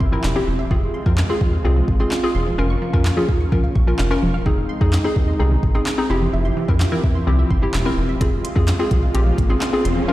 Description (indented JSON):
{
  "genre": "dance-pop",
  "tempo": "128 BPM",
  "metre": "4/4",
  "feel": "straight",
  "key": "F minor",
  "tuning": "A4 = 440 Hz",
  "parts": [
    { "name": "hollow square pluck", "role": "accompaniment", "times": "0.0-10.1 s", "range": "F3 to Bb4", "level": "-23 LUFS", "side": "left 2 dB", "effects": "chorus, sidechain pumping" },
    { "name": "warm analog pad", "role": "sustained chords", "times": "0.0-10.1 s", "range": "F3 to G4", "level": "-27 LUFS", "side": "right 2 dB", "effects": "lush chorus, sidechain pumping" },
    { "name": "wide unison pluck", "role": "arpeggios", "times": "0.0-10.1 s", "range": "Eb3 to Db6", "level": "-29 LUFS", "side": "right 2 dB", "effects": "sidechain pumping, digital delay" },
    { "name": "round analog bass", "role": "bass", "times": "0.0-10.0 s", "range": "E1 to F2", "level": "-19 LUFS", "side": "equal", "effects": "sidechain pumping" },
    { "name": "smooth R&B drum kit", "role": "drums", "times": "0.0-10.0 s", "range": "handclaps, hi-hat, kick drum, snare drum", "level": "-21 LUFS", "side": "equal", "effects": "none" },
    { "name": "riser", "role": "sound effects", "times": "9.0-10.1 s", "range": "none", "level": "-28 LUFS", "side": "left 1 dB", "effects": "none" }
  ],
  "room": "light reverb, digital ambience",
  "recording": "played on a big sound system in a bare room, stone room reverb",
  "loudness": "-16 LUFS",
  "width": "side -15 dB against mid",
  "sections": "0.0-10.1 A section",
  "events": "riser 9.0-10.1",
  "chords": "0.0 C; 0.7 Fm; 2.6 Bbm/F; 4.5 Ab/F; 6.1 C/F; 8.2 Fm"
}